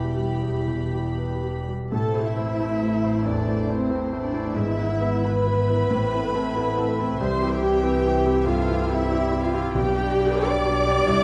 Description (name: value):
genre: classical, romantic movement for piano and orchestra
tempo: 92 BPM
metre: 4/4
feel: uneven beats, rubato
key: A minor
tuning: A4 = 437 Hz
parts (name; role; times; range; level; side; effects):
- clear grand piano; melody; 0.0-11.2 s; B1 to C5; -29 LUFS; equal; none
- clear symphonic violin section; melody; 0.0-11.2 s; C5 to B5; -44 LUFS; equal; none
- rich studio violin section; second line; 0.0-11.2 s; G4 to D6; -38 LUFS; equal; none
- dark symphonic viola section; accompaniment; 0.0-11.2 s; G3 to D5; -29 LUFS; equal; none
- mellow French horn section; sustained chords; 0.0-11.2 s; E3 to E4; -36 LUFS; equal; none
- rich symphonic cello section; bass; 0.0-11.2 s; E2 to C3; -33 LUFS; equal; none
- warm symphonic double bass section; bass; 0.0-11.2 s; E1 to C2; -32 LUFS; equal; none
- mellow hollow silver concert flute; second line; 1.9-11.2 s; C5 to D6; -35 LUFS; equal; none
- mellow bassoon; accompaniment; 3.3-11.2 s; E3 to C4; -32 LUFS; equal; none
- timpani; percussion; 9.8-10.7 s; B2; -36 LUFS; equal; none
room: wet recital hall reverb, RT60 1.7 s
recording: dark, warm production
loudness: -23 LUFS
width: mono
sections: 0.0-1.9 A section; 1.9-11.2 B section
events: none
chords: 0.0 Em; 1.9 Am; 4.6 E/G#; 5.9 Am; 7.2 C; 9.7 G/B